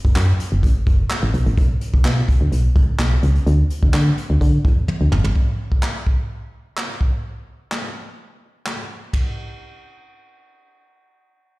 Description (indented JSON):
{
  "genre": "dance-pop",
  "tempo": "127 BPM",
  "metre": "4/4",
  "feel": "straight",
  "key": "unclear",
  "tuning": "A4 = 440 Hz",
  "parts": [
    { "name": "solid FM bass", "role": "bass", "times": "0.0-5.3 s", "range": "F#1 to D3", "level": "-16 LUFS", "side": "equal", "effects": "sidechain pumping" },
    { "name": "vintage brush drum kit", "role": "drums", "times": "0.0-9.3 s", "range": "handclaps, hi-hat, kick drum, ride cymbal, snare drum, toms", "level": "-19 LUFS", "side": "equal", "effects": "none" }
  ],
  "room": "little or no reverb",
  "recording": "played on a big sound system in a bare room, large studio reverb",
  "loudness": "-16 LUFS",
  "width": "side -21 dB against mid",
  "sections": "0.0-5.4 A section; 5.4-9.1 B section; 9.1-11.6 C section",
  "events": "drum fill 4.9-5.4; break 7.2-9.1",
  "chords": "none",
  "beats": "0.16 0.63 1.10 | 1.57 2.05 2.52 2.99 | 3.46 3.94 4.41 4.88 | 5.36 5.83 6.30 6.77 | 7.25 7.72 8.19 8.66 | 9.13"
}